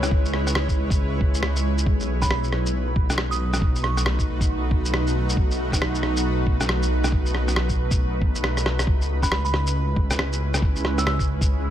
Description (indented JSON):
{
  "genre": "future garage",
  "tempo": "137 BPM",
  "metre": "4/4",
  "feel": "swing 61% on 16ths",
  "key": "unclear",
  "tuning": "A4 = 440 Hz",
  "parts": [
    { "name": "granular cloud pad", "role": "sustained chords", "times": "0.0-11.7 s", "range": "G#3 to C#5", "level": "-28 LUFS", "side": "right 1 dB", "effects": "built-in reverb, sidechain pumping" },
    { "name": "dark detuned saw bass", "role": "bass", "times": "0.0-11.7 s", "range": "B1 to C#2", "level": "-24 LUFS", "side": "equal", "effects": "sidechain pumping" },
    { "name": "electronic rim click and shaker", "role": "drums", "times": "0.0-11.5 s", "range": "none", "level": "-27 LUFS", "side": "equal", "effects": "none" },
    { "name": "electronic kick drum", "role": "drums", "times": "0.1-11.5 s", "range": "none", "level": "-22 LUFS", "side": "equal", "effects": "none" },
    { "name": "glassy synth bell", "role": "melody", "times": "2.2-4.5, 9.2-11.2 s", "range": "B5 to E6", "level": "-31 LUFS", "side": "right 3 dB", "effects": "chorus, tape echo" }
  ],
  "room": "light reverb",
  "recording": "none",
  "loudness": "-20 LUFS",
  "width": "side -11 dB against mid",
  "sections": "0.0-11.7 A section",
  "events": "drum fill 8.5-8.9",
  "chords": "0.0 C#m7; 1.9 B7; 8.9 C#m7"
}